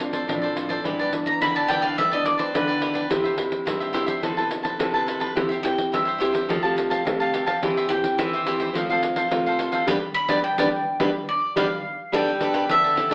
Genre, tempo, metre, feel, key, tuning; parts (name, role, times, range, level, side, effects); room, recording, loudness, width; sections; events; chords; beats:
samba and choro; 106 BPM; 4/4; straight; A4 = 441 Hz
cavaquinho; accompaniment; 0.0-13.1 s; E4 to A5; -27 LUFS; equal
nylon-string guitar; accompaniment; 0.0-13.1 s; G2 to A4; -24 LUFS; equal
pandeiro; percussion; 0.0-13.1 s; -29 LUFS; equal
bowl-back mandolin; melody; 1.3-13.1 s; B4 to B5; -24 LUFS; equal
wet large studio reverb, RT60 0.9 s; band playing live in one room, AM radio sound; -20 LUFS; side -34 dB against mid
0.0-12.1 A section; 12.1-13.1 B section
mandolin solo 0.0-12.1; band accent 9.9-12.1
0.0 Dm7/A; 0.9 G6; 3.1 C; 4.2 Amadd9/C; 5.4 C; 6.5 Fadd9; 7.6 C/E; 8.7 F; 9.9 G7; 12.1 Gadd9
0.29 | 0.85 1.42 1.98 2.55 | 3.11 3.67 4.24 4.80 | 5.37 5.93 6.49 7.06 | 7.62 8.19 8.75 9.31 | 9.88 10.44 11.01 11.57 | 12.13 12.70